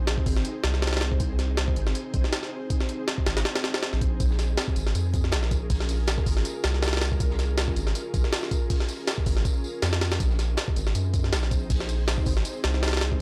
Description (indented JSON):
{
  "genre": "drum and bass, jungle",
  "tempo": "160 BPM",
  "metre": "4/4",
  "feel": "swing 55% on 16ths",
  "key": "unclear",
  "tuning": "A4 = 441 Hz",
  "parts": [
    { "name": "ethereal airy pad", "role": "sustained chords", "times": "0.0-13.2 s", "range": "C4 to C5", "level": "-37 LUFS", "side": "equal", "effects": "ensemble chorus, built-in reverb, tremolo" },
    { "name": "soft dub sub bass", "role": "bass", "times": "0.0-13.2 s", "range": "Ab1 to Gb2", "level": "-28 LUFS", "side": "equal", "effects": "tube saturation" },
    { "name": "jungle sampler-style drum kit", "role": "drums", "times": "0.1-13.2 s", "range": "hi-hat, kick drum, snare drum", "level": "-28 LUFS", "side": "equal", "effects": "none" },
    { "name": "crunchy breakbeat drum kit", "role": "drums", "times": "4.2-13.1 s", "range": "hi-hat, snare drum, tambourine", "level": "-42 LUFS", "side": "equal", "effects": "high-pass filter on hats, high-pass filter on snare, high-pass filter on perc, high-pass filter on room" }
  ],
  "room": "studio reverb",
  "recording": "dry, gritty hardware recording, transformer saturation",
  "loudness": "-26 LUFS",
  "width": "mono",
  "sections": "0.0-13.2 A section",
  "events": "none",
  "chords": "0.0 Ab; 4.2 Bbm7; 10.2 Ab"
}